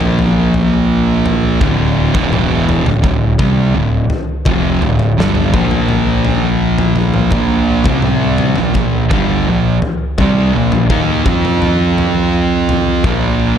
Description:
stoner and doom metal; 84 BPM; 4/4; straight; A4 = 440 Hz
thick fuzz guitar; riff; 0.0-13.6 s; D2 to F4; -17 LUFS; left 8 dB; distortion
thick fuzz guitar; riff; 0.0-13.6 s; D2 to F4; -16 LUFS; right 8 dB; distortion
fuzz picked electric bass; bass; 0.0-13.5 s; D1 to F2; -19 LUFS; equal; overdrive
big rock drum kit; drums; 0.0-13.2 s; kick drum, snare drum, toms; -18 LUFS; left 1 dB
light reverb, small room ambience; dark, warm production; -11 LUFS; side -8 dB against mid
0.0-13.6 A section
0.0 Bb5; 1.6 D5; 2.1 E5; 2.9 Dm; 5.5 Bb5; 7.9 C5; 8.6 Bb5; 11.3 F5; 13.0 Bb5

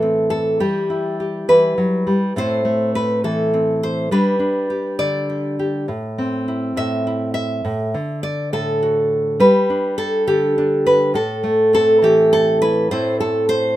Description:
folk, solo fingerstyle acoustic guitar; 68 BPM (dotted quarters); 6/8; straight; A minor; A4 = 440 Hz
nylon-string guitar; solo; 0.0-13.8 s; A2 to E5; -16 LUFS; equal
light reverb; minimal, uncompressed stereo recording; -16 LUFS; side -14 dB against mid
0.0-12.9 A section
0.0 Am; 0.6 Em; 2.4 Am; 4.1 G; 5.9 Am; 7.6 D/A; 9.4 G; 11.1 Am

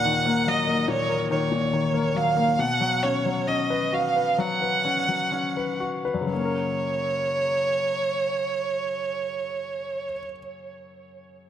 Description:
pop; 59-74 BPM; 4/4; straight; F# major; A4 = 440 Hz
warm violin; melody; 0.0-10.2 s; C#5 to F#5; -25 LUFS; right 3 dB; tape echo
clear grand piano; accompaniment; 0.0-11.5 s; D#2 to B4; -26 LUFS; left 4 dB
light reverb, studio reverb; -22 LUFS; side -10 dB against mid
0.0-6.3 A section; 6.3-10.4 B section
slowing down 0.0-6.3
0.0 D#m; 2.6 Bsus2; 6.3 F#

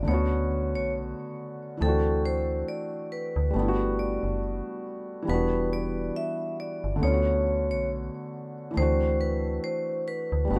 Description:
lo-fi hip hop; 69 BPM; 4/4; swing 57% on 16ths; A4 = 440 Hz
vibraphone with medium hard mallets; melody; 0.0-10.6 s; A4 to E5; -33 LUFS; equal
felt-muted upright piano; accompaniment; 0.0-10.6 s; D3 to F#4; -32 LUFS; equal; cassette tape
metallic FM bass; bass; 0.0-10.6 s; E1 to D2; -31 LUFS; equal
light reverb, small room ambience; rough home demo mix; -28 LUFS; mono
0.0-10.6 A section
0.1 Bm9; 1.8 D7; 3.5 Gmaj7; 5.3 Em7; 7.0 Bm9; 8.8 D7

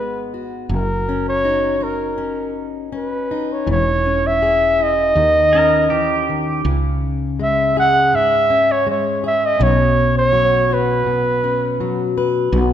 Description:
acoustic folk-pop ballad; 81 BPM; 4/4; straight; A4 = 438 Hz
mellow flugelhorn; melody; 0.0-12.2 s; A#4 to F#5; -16 LUFS; right 1 dB
fingerpicked plugged-in steel-string acoustic guitar; accompaniment; 0.0-12.7 s; G#2 to B4; -21 LUFS; left 4 dB
woody fretless electric bass; bass; 0.0-12.7 s; E1 to D#2; -22 LUFS; right 1 dB
pedal steel guitar; second line; 5.5-6.6 s; G4 to A#4; -22 LUFS; right 3 dB
wet scoring stage reverb, RT60 1.6 s; minimal, uncompressed stereo recording; -15 LUFS; side -10 dB against mid
0.0-6.7 A section; 6.7-12.7 B section
0.0 G#m7; 0.7 D#m7/F#; 3.7 E6; 5.2 D#7; 6.7 C#5; 9.6 Bsus2

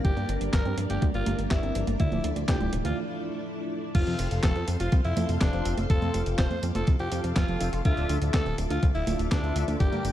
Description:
italo disco; 123 BPM; 4/4; straight; F major; A4 = 438 Hz
raspy alto saxophone; melody; 0.0-10.1 s; D4 to C5; -34 LUFS; equal; digital delay
string machine, full ensemble; sustained chords; 0.0-10.1 s; F3 to D6; -35 LUFS; equal; ensemble chorus
warbly dusty pluck; arpeggios; 0.0-10.1 s; D2 to F4; -36 LUFS; right 2 dB; chorus, digital delay
fat analog bass; bass; 0.0-10.1 s; D1 to G2; -29 LUFS; equal
clean 12-bit digital drum machine; drums; 0.0-10.1 s; congas, crash cymbal, handclaps, hi-hat, snare drum, tambourine; -33 LUFS; right 1 dB; overdrive
electronic kick drum; drums; 0.0-9.9 s; -24 LUFS; equal; overdrive
mellow synth brass; stabs; 3.9-10.1 s; C4 to G5; -35 LUFS; left 4 dB; chorus
light reverb, digital ambience; dark, warm production; -24 LUFS; side -12 dB against mid
0.0-4.0 A section; 4.0-10.1 B section
break 3.0-4.0
0.0 Gm; 2.0 Dmadd9; 4.0 F; 7.9 Dmadd9

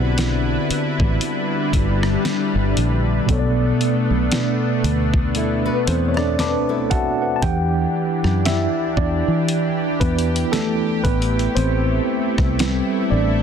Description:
contemporary R&B; 58 BPM; 4/4; swing 58% on 16ths; E minor; A4 = 440 Hz
mellow tine electric piano; accompaniment; 0.0-13.4 s; B2 to D6; -22 LUFS; right 1 dB; medium stereo tremolo
lush unison pad; sustained chords; 0.0-13.4 s; D3 to F#5; -23 LUFS; left 1 dB; chorus
fingered electric bass; bass; 0.0-13.4 s; G1 to E3; -21 LUFS; equal
dusty soul sampler-style drum kit; drums; 0.2-12.9 s; hi-hat, kick drum, rim click, snare drum; -23 LUFS; equal
nylon-string guitar; arpeggios; 5.4-7.4 s; E4 to D5; -26 LUFS; left 5 dB; ping-pong delay
light reverb; dense, heavily limited modern master; -17 LUFS; side -7 dB against mid
0.0-7.4 A section; 7.4-13.4 B section
tine electric piano solo 7.4-13.4
0.0 Cmaj9#11; 3.3 Bm7; 7.4 Em7; 11.0 Am7

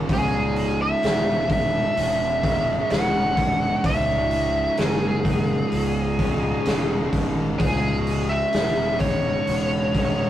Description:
stoner and doom metal; 64 BPM; 4/4; straight; C# minor; A4 = 440 Hz
fuzz guitar; riff; 0.0-10.3 s; C#2 to C#3; -26 LUFS; right 1 dB; distortion
fuzz fingered electric bass; bass; 0.0-10.3 s; C#1 to G#1; -27 LUFS; equal; overdrive
fuzz lead guitar; melody; 0.1-10.3 s; G#4 to F#5; -24 LUFS; equal; wah, distortion
raw garage drum kit; drums; 0.1-10.2 s; hi-hat, kick drum, snare drum; -25 LUFS; equal
moderate studio reverb, RT60 0.6 s; rough rehearsal-room recording, warm saturation; -20 LUFS; side -12 dB against mid
0.0-10.3 A section
0.0 C#m

